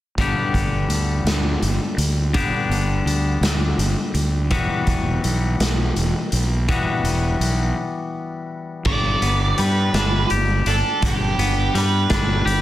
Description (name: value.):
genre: indie rock.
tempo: 55 BPM (dotted quarters).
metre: 6/8.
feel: straight.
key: G major.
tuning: A4 = 436 Hz.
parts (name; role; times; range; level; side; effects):
twangy electric guitar; riff; 0.2-12.6 s; G2 to G4; -24 LUFS; left 4 dB; none.
fuzz fingered electric bass; bass; 0.2-12.6 s; E1 to G2; -21 LUFS; right 1 dB; overdrive.
raw garage drum kit; drums; 0.2-12.6 s; crash cymbal, hi-hat, kick drum, snare drum; -24 LUFS; equal; none.
octave-fuzz lead guitar; melody; 8.9-12.6 s; G4 to D5; -23 LUFS; right 4 dB; distortion.
room: little or no reverb.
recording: dense, heavily limited modern master.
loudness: -18 LUFS.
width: side -14 dB against mid.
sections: 0.2-8.9 A section; 8.9-12.6 B section.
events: break 7.8-8.9.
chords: 0.2 G; 4.5 Emadd9; 8.9 G.